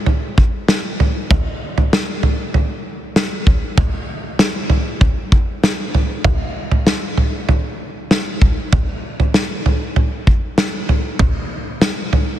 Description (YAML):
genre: dream pop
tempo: 97 BPM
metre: 4/4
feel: straight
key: none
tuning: none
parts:
  - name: loose indie drum kit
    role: drums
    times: 0.1-12.3 s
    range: kick drum, snare drum, toms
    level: -15 LUFS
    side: equal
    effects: none
room: moderate huge ambient reverb, RT60 4.2 s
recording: dense, heavily limited modern master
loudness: -15 LUFS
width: side -12 dB against mid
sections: 0.0-12.4 A section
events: none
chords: none